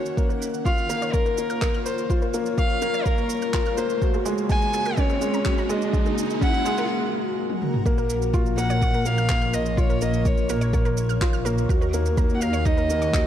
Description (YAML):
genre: piano and strings electronica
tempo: 125 BPM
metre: 4/4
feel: straight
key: Bb minor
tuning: A4 = 441 Hz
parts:
  - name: dark violin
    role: melody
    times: 0.0-13.3 s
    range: Bb4 to Ab5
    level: -28 LUFS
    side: equal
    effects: low-pass filter, digital delay
  - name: granular cloud pad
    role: sustained chords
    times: 0.0-13.3 s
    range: Eb3 to Gb5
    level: -32 LUFS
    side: left 2 dB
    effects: built-in reverb, sidechain pumping
  - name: felt-muted upright piano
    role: riff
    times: 0.0-13.3 s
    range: Ab3 to Bb4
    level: -27 LUFS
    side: left 1 dB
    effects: digital delay
  - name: deep house drum kit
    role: drums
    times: 0.1-13.2 s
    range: handclaps, shaker, toms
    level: -33 LUFS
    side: right 1 dB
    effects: overdrive
  - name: analog pluck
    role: arpeggios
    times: 0.2-13.2 s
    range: Ab4 to F6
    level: -36 LUFS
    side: right 2 dB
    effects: chorus, sidechain pumping, digital delay
  - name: electronic kick drum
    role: drums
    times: 0.2-13.2 s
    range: none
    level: -23 LUFS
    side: equal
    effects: overdrive
  - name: riser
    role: sound effects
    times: 2.0-6.9 s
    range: none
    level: -33 LUFS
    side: right 2 dB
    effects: none
  - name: warm studio double bass section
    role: bass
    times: 7.9-13.3 s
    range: Bb1 to Eb2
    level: -25 LUFS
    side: equal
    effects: sidechain pumping
room: light reverb, digital ambience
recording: dark, warm production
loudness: -20 LUFS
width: side -10 dB against mid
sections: 0.0-7.9 A section; 7.9-13.3 B section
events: build-up 0.0-7.9; riser 2.0-6.9; break 6.9-7.9; drum fill 7.5-7.9; drop 7.9-13.3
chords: 0.2 Bbm; 4.0 Gbadd9; 7.9 Bbm; 11.7 Ebm7